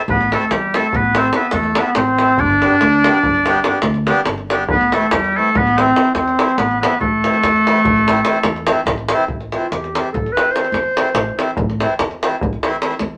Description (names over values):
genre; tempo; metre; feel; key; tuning
balkan folk, Balkan wedding band; 287 BPM (eighths); 11/8; straight; A minor; A4 = 435 Hz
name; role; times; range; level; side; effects
accordion; accompaniment; 0.0-12.9 s; E3 to A4; -23 LUFS; equal; none
davul; percussion; 0.0-13.1 s; none; -22 LUFS; equal; none
mellow clarinet; melody; 0.1-11.6 s; G3 to C5; -20 LUFS; equal; none
clear oboe; second line; 0.1-8.8 s; G4 to D5; -20 LUFS; equal; none
upright bass; bass; 0.1-13.2 s; G1 to E2; -26 LUFS; equal; none
room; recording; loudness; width
wet studio reverb, RT60 0.5 s; none; -16 LUFS; mono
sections
0.1-9.3 A section; 9.3-13.2 B section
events
clarinet solo 9.3-13.2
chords
0.1 Am; 2.4 G; 4.7 Am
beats
| 0.07 0.28 0.49 0.70 0.92 1.13 1.34 1.55 1.76 1.97 2.18 | 2.39 2.60 2.81 3.02 3.23 3.44 3.65 3.86 4.07 4.28 4.49 | 4.70 4.91 5.12 5.33 5.54 5.75 5.96 6.17 6.38 6.59 6.80 | 7.01 7.21 7.42 7.63 7.84 8.05 8.26 8.47 8.67 8.88 9.09 | 9.30 9.51 9.71 9.92 10.13 10.34 10.54 10.75 10.96 11.17 11.37 | 11.58 11.79 11.99 12.20 12.41 12.61 12.82 13.03